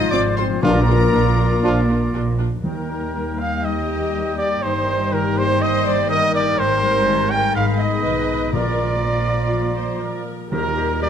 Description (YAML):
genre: classical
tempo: 121 BPM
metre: 4/4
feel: rubato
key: Eb major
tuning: A4 = 444 Hz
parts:
  - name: warm studio violin section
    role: melody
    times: 0.0-11.1 s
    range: Bb4 to Eb6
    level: -34 LUFS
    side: left 4 dB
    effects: none
  - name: bright clarinet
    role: second line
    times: 0.0-11.1 s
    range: Eb4 to G4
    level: -30 LUFS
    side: left 2 dB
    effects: none
  - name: concert flute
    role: second line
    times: 0.0-11.1 s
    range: Bb4-21c to G5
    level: -28 LUFS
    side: left 3 dB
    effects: none
  - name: rich symphonic violin section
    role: second line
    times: 0.0-11.1 s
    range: Bb4 to G5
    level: -32 LUFS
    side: left 2 dB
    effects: none
  - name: warm oboe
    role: second line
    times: 0.0-11.1 s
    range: C5 to Cb6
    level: -31 LUFS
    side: right 2 dB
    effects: none
  - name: mellow French horn section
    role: sustained chords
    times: 0.0-11.1 s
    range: Bb3 to F4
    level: -30 LUFS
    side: left 4 dB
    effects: none
  - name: concert harp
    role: arpeggios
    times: 0.0-11.1 s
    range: G2 to Bb4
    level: -27 LUFS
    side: left 11 dB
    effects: none
  - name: warm symphonic cello section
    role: bass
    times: 0.0-11.1 s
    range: Eb2 to Eb3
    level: -26 LUFS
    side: right 2 dB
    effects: none
  - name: warm symphonic double bass section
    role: bass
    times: 0.0-11.1 s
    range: G1 to Eb2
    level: -25 LUFS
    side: right 3 dB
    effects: none
  - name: warm symphonic viola section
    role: accompaniment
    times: 0.1-11.1 s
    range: C4 to C5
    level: -28 LUFS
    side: right 1 dB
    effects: none
  - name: warm trombone section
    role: sustained chords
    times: 0.6-11.1 s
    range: Bb2 to D4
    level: -30 LUFS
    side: right 4 dB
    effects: none
  - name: clear trumpet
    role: stabs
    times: 0.6-11.1 s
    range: F4 to G5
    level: -22 LUFS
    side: right 2 dB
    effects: none
  - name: timpani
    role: percussion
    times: 0.6-3.4, 8.5-11.1 s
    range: Bb2 to Eb3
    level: -25 LUFS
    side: left 2 dB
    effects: none
room: moderate recital hall reverb, RT60 1.3 s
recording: close, detailed microphones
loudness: -17 LUFS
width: side -8 dB against mid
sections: 0.0-2.6 A section; 2.6-11.1 B section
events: none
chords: 0.0 Fm7/Ab; 0.6 Bb; 2.6 Eb; 4.6 Eb/G; 6.6 Abmaj7; 7.6 Abm; 8.5 Bb; 10.5 Eb